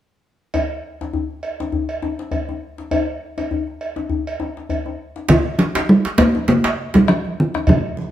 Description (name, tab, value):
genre	west african traditional, West African drum ensemble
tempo	101 BPM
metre	4/4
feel	swing 56% on 16ths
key	unclear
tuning	A4 = 440 Hz
part	cowbell	percussion	0.5-7.8 s	none	-28 LUFS	right 4 dB	none
part	djembe	percussion	0.5-7.8 s	none	-24 LUFS	left 4 dB	none
part	talking drum	melody	5.3-8.1 s	Eb3 to Bb3	-15 LUFS	equal	none
part	bombo	percussion	5.3-7.8 s	none	-22 LUFS	equal	none
part	congas	percussion	5.3-8.1 s	none	-26 LUFS	right 2 dB	none
part	djembe	percussion	5.3-7.1 s	none	-24 LUFS	right 4 dB	none
room	moderate large studio reverb, RT60 1.2 s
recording	band playing live in one room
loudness	-17 LUFS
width	side -12 dB against mid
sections	0.5-5.3 A section; 5.3-8.1 B section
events	none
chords	none